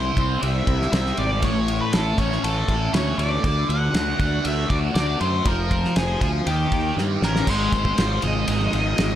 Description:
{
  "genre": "psychedelic rock",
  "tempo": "119 BPM",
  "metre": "4/4",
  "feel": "straight",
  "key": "unclear",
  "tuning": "A4 = 440 Hz",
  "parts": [
    { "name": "octave-fuzz lead guitar", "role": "melody", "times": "0.0-9.2 s", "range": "G4 to F#5", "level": "-26 LUFS", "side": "equal", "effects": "distortion, slapback echo" },
    { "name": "thick fuzz guitar", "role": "riff", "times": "0.0-9.2 s", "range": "A2 to C5", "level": "-25 LUFS", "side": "equal", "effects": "distortion, phaser" },
    { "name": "fuzz fingered electric bass", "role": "bass", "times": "0.0-9.2 s", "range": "F1 to G2", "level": "-24 LUFS", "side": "equal", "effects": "overdrive" },
    { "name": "cloth-damped thuddy drum kit", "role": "drums", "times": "0.2-9.1 s", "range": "crash cymbal, kick drum, ride cymbal, snare drum", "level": "-25 LUFS", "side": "equal", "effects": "none" },
    { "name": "congas", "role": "percussion", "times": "8.2-9.2 s", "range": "none", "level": "-34 LUFS", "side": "right 2 dB", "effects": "none" }
  ],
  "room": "small room ambience",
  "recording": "none",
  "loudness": "-19 LUFS",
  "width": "side -11 dB against mid",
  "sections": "0.0-7.5 A section; 7.5-9.2 B section",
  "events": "drum fill 7.0-7.5",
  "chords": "0.0 C; 1.4 A; 3.4 D; 5.5 F5; 6.5 Eb7; 7.5 Ab6"
}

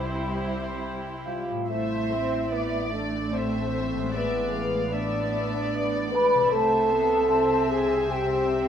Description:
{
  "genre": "classical, slow romantic movement for symphony orchestra",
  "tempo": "65-77 BPM",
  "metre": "3/4",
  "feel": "rubato",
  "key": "A minor",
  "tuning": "A4 = 440 Hz",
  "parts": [
    { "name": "rich studio violin section", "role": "melody", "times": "0.0-8.7 s", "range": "C5 to F5", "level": "-36 LUFS", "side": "left 4 dB", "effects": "none" },
    { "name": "warm symphonic violin section", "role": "second line", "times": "0.0-8.7 s", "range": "E4 to D5", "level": "-35 LUFS", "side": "left 2 dB", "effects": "none" },
    { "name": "dark symphonic viola section", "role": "accompaniment", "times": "0.0-8.7 s", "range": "G3 to C4", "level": "-32 LUFS", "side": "right 2 dB", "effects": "none" },
    { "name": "concert harp", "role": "arpeggios", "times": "0.0-8.7 s", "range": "A2 to G4", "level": "-38 LUFS", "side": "left 6 dB", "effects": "none" },
    { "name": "dark studio cello section", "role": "bass", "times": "0.0-8.7 s", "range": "A2 to E4", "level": "-36 LUFS", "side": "right 3 dB", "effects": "none" },
    { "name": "rich symphonic double bass section", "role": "bass", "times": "0.0-8.7 s", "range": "A1 to C2", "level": "-37 LUFS", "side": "right 3 dB", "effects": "none" },
    { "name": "mellow hollow small flute group", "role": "second line", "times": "1.2-8.6 s", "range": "B4 to B5", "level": "-29 LUFS", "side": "equal", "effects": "none" },
    { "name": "mellow French horn section", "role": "sustained chords", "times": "1.3-8.7 s", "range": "B3 to B4", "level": "-26 LUFS", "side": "equal", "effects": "none" }
  ],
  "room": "moderate recital hall reverb, RT60 1.7 s",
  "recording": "none",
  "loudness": "-23 LUFS",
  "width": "side -8 dB against mid",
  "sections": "0.0-1.7 A section; 1.7-8.7 B section",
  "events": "none",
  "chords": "0.0 C; 1.7 Am; 6.5 Am/C"
}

